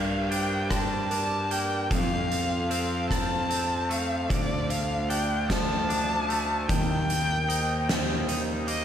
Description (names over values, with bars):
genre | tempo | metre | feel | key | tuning
post-rock | 50 BPM (dotted quarters) | 6/8 | straight | G minor | A4 = 440 Hz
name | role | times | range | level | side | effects
dark violin | melody | 0.0-8.8 s | D5 to A5 | -29 LUFS | left 1 dB | slapback echo, tape echo
hand-pumped harmonium | sustained chords | 0.0-8.8 s | D3 to G5 | -39 LUFS | right 1 dB | none
twangy electric guitar | arpeggios | 0.0-8.8 s | F2 to Eb4 | -34 LUFS | left 2 dB | wide subtle chorus, slapback echo, tape echo
vibraphone with soft mallets | arpeggios | 0.0-8.8 s | A4 to D5 | -39 LUFS | right 3 dB | slapback echo, tape echo
fuzz picked electric bass | bass | 0.0-8.8 s | D2 to G2 | -30 LUFS | equal | overdrive
oversized low-tuned drum kit | drums | 0.3-8.8 s | hi-hat, kick drum, rim click, snare drum | -30 LUFS | equal | none
room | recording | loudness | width
moderate lush hall reverb, RT60 2.7 s | big arena sound | -24 LUFS | side -9 dB against mid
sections
0.0-8.8 A section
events
none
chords
0.0 Gm; 1.9 F; 4.3 Dm; 6.7 Eb